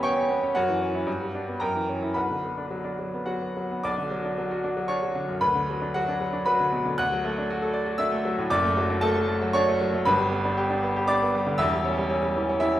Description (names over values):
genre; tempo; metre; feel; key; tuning
classical, virtuoso piano study; 100-120 BPM; 3/4; rubato; B minor; A4 = 438 Hz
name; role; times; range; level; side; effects
bright baby grand piano; solo; 0.0-12.8 s; E1 to F#6; -23 LUFS; equal; none
room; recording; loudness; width
wet recital hall reverb, RT60 1.3 s; heard from further back in the room; -23 LUFS; side -13 dB against mid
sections
0.0-3.9 A section; 3.9-12.8 B section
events
none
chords
0.0 C#m7b5/E; 0.5 F#5; 1.1 Gmaj7; 1.6 F#7b9; 2.1 Bm; 5.4 Bm/D; 7.0 D; 8.5 D/F#; 10.1 G; 11.6 C#dim/E